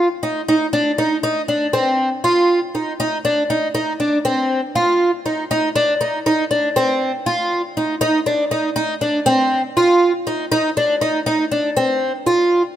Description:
progressive instrumental, progressive; 239 BPM (eighths); 5/8; straight; A4 = 440 Hz
fingerpicked twelve-string acoustic guitar; solo; 0.0-12.6 s; C4 to F4; -16 LUFS; equal
light reverb; rough home demo mix; -16 LUFS; side -11 dB against mid
0.0-12.8 A section

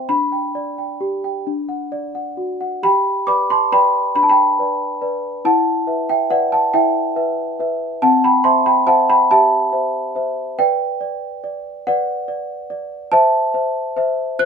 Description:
classical, lullaby for celesta; 47 BPM (dotted quarters); 6/8; rubato; G major; A4 = 439 Hz
worn celesta; solo; 0.0-14.5 s; C4 to F#6; -15 LUFS; equal
light reverb; minimal, uncompressed stereo recording; -15 LUFS; side -6 dB against mid
0.0-2.8 A section; 2.8-14.5 B section
0.1 G/D; 1.5 D; 2.8 G; 5.5 Em; 8.0 C; 10.6 G/B; 13.1 Am/C

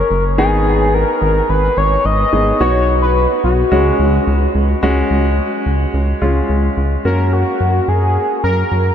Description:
synth-pop; 108 BPM; 4/4; straight; F# major; A4 = 440 Hz
octave-doubled lead; melody; 0.0-8.9 s; F#4 to D#5; -17 LUFS; left 1 dB; chorus, diffuse ambient delay
clear baby grand piano; accompaniment; 0.0-8.9 s; G#3 to G#4; -18 LUFS; equal
rubbery square bass; bass; 0.0-8.9 s; F#1 to F#2; -16 LUFS; equal
wet huge ambient reverb, RT60 7.4 s; dreamy mix soaked in reverb; -12 LUFS; side -9 dB against mid
0.0-4.8 A section; 4.8-7.0 B section; 7.0-8.9 C section
0.4 G#m; 2.6 B; 3.7 C#sus4; 7.0 F#add9

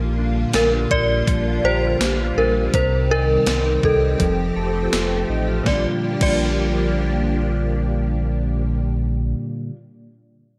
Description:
dream pop; 82 BPM; 4/4; straight; Bb major; A4 = 438 Hz
soft string machine; sustained chords; 0.0-8.8 s; D3 to G4; -29 LUFS; equal; phaser, ensemble chorus
mellow electric guitar; arpeggios; 0.0-9.8 s; Bb2 to A4; -27 LUFS; equal; subtle chorus, delay
sub bass with octave; bass; 0.0-9.3 s; F1 to C2; -25 LUFS; equal
gated 80s digital drum machine; drums; 0.5-6.4 s; crash cymbal, hi-hat, kick drum, snare drum, tambourine; -26 LUFS; equal; gated reverb, gated reverb snare
synth chime; melody; 0.6-9.4 s; A4 to D5; -24 LUFS; equal; ensemble chorus, delay
light reverb; -20 LUFS; mono
0.0-5.7 A section; 5.7-8.6 B section
0.0 Bb6; 2.7 Cm; 4.2 Fadd9; 5.7 Bb6

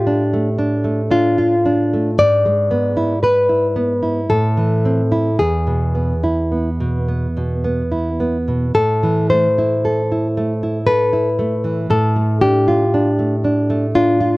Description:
romantic duo for nylon-string guitar and classical guitar; 53-60 BPM; 3/4; rubato; A minor; A4 = 438 Hz
nylon-string guitar; melody; 0.0-14.4 s; F4 to D5; -17 LUFS; left 2 dB
nylon-string guitar; accompaniment; 0.0-14.4 s; E2 to B4; -17 LUFS; right 1 dB
moderate booth ambience, RT60 0.3 s; worn, warbling old tape, cassette tape, warbly pitch drift; -14 LUFS; side -21 dB against mid
0.0-14.4 A section
0.0 Dm/A; 2.2 E7/G#; 4.3 Am; 5.4 E; 8.8 Am; 11.9 Dm/A

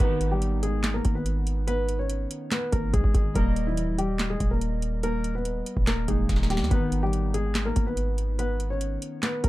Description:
hip hop, trap; 143 BPM; 4/4; half-time; G# harmonic minor; A4 = 436 Hz
dark baby grand piano; melody; 0.0-9.5 s; E3 to C#5; -30 LUFS; left 1 dB
warbly lo-fi synth keys; accompaniment; 0.0-9.5 s; D#3 to D#5; -34 LUFS; left 1 dB; chorus
hard-hitting 808-style bass; bass; 0.0-9.5 s; D#1 to D#2; -27 LUFS; equal
booming analog drum machine; drums; 0.0-9.5 s; handclaps, hi-hat, kick drum, snare drum; -26 LUFS; equal; overdrive
little or no reverb; dark, warm production; -24 LUFS; side -17 dB against mid
0.0-9.5 A section
drum fill 6.3-6.7
0.0 G#m; 3.4 D#; 6.7 G#m

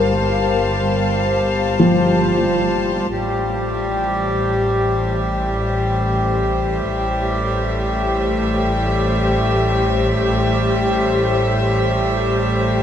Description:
ambient; free time; A4 = 440 Hz
clear chamber string section; sustained chords; 0.0-12.8 s; A2 to A5; -20 LUFS; left 1 dB
felt-muted upright piano; arpeggios; 0.0-3.3 s; F3 to Bb4; -20 LUFS; left 1 dB; ping-pong delay
clear chamber double bass section; bass; 0.0-12.8 s; G1 to A1; -22 LUFS; equal; tube saturation
hand-pumped harmonium; drone; 3.1-12.8 s; G3; -20 LUFS; left 1 dB
wet huge ambient reverb, RT60 8.3 s; cassette tape; -16 LUFS; side -9 dB against mid
0.0-3.1 A section; 3.1-12.8 B section
fade-in on string section 3.1-12.8
0.0 Gm7; 3.1 Am7

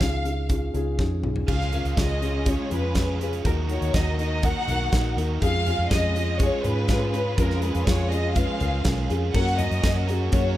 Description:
piano-driven pop; 122 BPM; 4/4; straight; A4 = 439 Hz
rich studio violin section; melody; 0.0-10.6 s; A#4 to F#5; -29 LUFS; left 1 dB
felt-muted upright piano; accompaniment; 0.0-10.6 s; C#3 to C#5; -29 LUFS; left 3 dB
vintage muted fingered electric bass; bass; 0.0-10.6 s; A#1 to G#2; -26 LUFS; equal
modern studio drum kit; drums; 0.0-10.4 s; crash cymbal, hi-hat, kick drum, snare drum, toms; -26 LUFS; equal
rich symphonic string section; sustained chords; 1.5-10.6 s; C#3 to A#4; -35 LUFS; equal
crunchy overdriven guitar; riff; 1.5-10.6 s; C#3 to C#5; -34 LUFS; right 6 dB
light reverb, small room reverb; rough home demo mix; -21 LUFS; side -14 dB against mid
0.0-1.5 A section; 1.5-9.3 B section; 9.3-10.6 C section
drum fill 1.0-1.5
0.0 C#add9; 1.5 C#; 3.4 D#m; 5.4 C#/E#; 9.3 F#

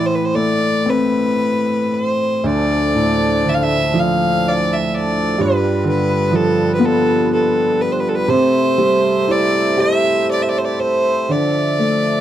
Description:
celtic folk, Celtic slow air; 41 BPM (dotted quarters); 6/8; uneven beats, rubato; D dorian; A4 = 439 Hz
clear fiddle; melody; 0.0-12.2 s; A4 to F5; -18 LUFS; equal
clear upright piano; accompaniment; 0.0-12.2 s; D2 to G4; -18 LUFS; equal
hand-pumped harmonium; sustained chords; 2.5-12.2 s; F3 to E5; -22 LUFS; right 2 dB
small room ambience; dry, close 1970s-style studio recording; -14 LUFS; side -11 dB against mid
0.0-12.2 A section
0.0 Am; 2.4 Dm; 5.4 G7; 8.3 C6; 11.3 Dmadd9

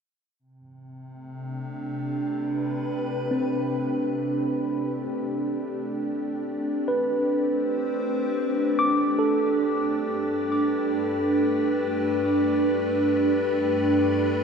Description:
ambient; free time; A4 = 439 Hz
evolving wavetable pad; sustained chords; 0.9-14.4 s; G2 to B4; -24 LUFS; equal; chorus, built-in reverb
tine electric piano; arpeggios; 3.3-14.4 s; C4 to D6; -28 LUFS; equal; fast stereo tremolo, tape echo
wet huge ambient reverb, RT60 7.4 s; -22 LUFS; side -6 dB against mid
0.4-14.4 A section
0.4 Csus2; 5.0 Gsus24; 9.6 Gadd9

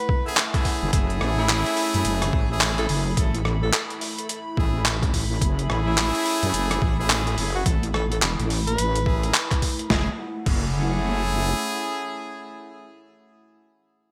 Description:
glitch hop; 107 BPM; 4/4; swing 61% on 16ths; F# minor; A4 = 439 Hz
breathy tenor saxophone; melody; 0.0-9.2 s; E4 to B4; -32 LUFS; equal; digital delay
dark analog pad; sustained chords; 0.0-12.9 s; A3 to B5; -36 LUFS; equal; chorus, phaser, sidechain pumping
electronic kick drum; drums; 0.1-10.7 s; -26 LUFS; equal; overdrive
brilliant horn section; stabs; 0.3-12.9 s; A3 to A4; -31 LUFS; equal; sidechain pumping, digital delay
boom bap sampler-style drum kit; drums; 0.4-10.7 s; crash cymbal, handclaps, hi-hat, rim click, snare drum; -28 LUFS; equal; overdrive, gated reverb
wobble bass; bass; 0.8-11.5 s; E1 to F#2; -27 LUFS; equal; chorus, tube saturation
light reverb; bright 1980s-style digital production; -23 LUFS; mono
0.0-9.9 A section; 9.9-12.1 B section
drop 0.0-9.9
0.0 F#m7

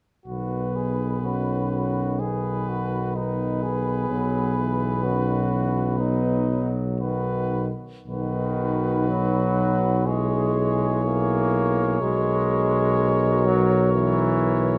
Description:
classical, hymn-like piece for brass band; 62 BPM; 4/4; rubato; B major; A4 = 441 Hz
warm cornet; melody; 0.3-14.8 s; B4 to C#5; -32 LUFS; equal
warm flugelhorn; second line; 0.3-14.8 s; D#4 to A#4; -34 LUFS; equal
bright trombone; accompaniment; 0.3-14.8 s; D#3 to A#3; -30 LUFS; equal
warm euphonium; accompaniment; 0.3-14.8 s; B3 to F#4; -32 LUFS; equal
warm tuba; bass; 0.3-14.8 s; B1; -27 LUFS; equal
moderate recital hall reverb, RT60 1.8 s; -23 LUFS; mono
0.3-8.1 A section; 8.1-14.8 B section
0.3 B; 10.1 C#m7/B; 12.0 F#7/B

